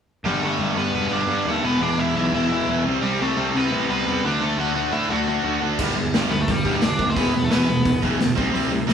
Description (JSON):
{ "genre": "punk rock", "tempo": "174 BPM", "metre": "4/4", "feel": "straight", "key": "unclear", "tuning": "A4 = 443 Hz", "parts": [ { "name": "tight distorted guitar", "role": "riff", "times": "0.2-8.9 s", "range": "E2 to D4", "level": "-24 LUFS", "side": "right 6 dB", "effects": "distortion" }, { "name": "fuzz picked electric bass", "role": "bass", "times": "0.2-8.9 s", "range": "E1 to A2", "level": "-28 LUFS", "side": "right 1 dB", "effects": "overdrive" }, { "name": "crunchy overdriven guitar", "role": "melody", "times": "0.3-8.0 s", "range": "G3 to F#5", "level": "-25 LUFS", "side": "left 1 dB", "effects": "none" }, { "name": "sludgy distorted guitar", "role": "riff", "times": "0.3-8.9 s", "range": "E2 to D4", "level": "-24 LUFS", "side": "left 5 dB", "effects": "overdrive" }, { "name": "raw garage drum kit", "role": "drums", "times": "5.8-8.9 s", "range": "crash cymbal, hi-hat, kick drum, snare drum", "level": "-24 LUFS", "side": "equal", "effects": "none" } ], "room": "moderate stone room reverb, RT60 1.3 s", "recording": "band playing live in one room, small room reverb", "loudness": "-19 LUFS", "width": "side -7 dB against mid", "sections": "0.3-5.8 A section; 5.8-8.9 B section", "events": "none", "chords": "0.3 G; 1.6 E5; 2.9 C5; 4.2 D; 5.8 G5; 7.2 E5; 8.4 C5", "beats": "| 0.26 0.60 0.95 1.30 | 1.64 1.99 2.33 2.68 | 3.03 3.37 3.72 4.06 | 4.41 4.75 5.10 5.45 | 5.79 6.13 6.48 6.82 | 7.17 7.51 7.86 8.20 | 8.54 8.89" }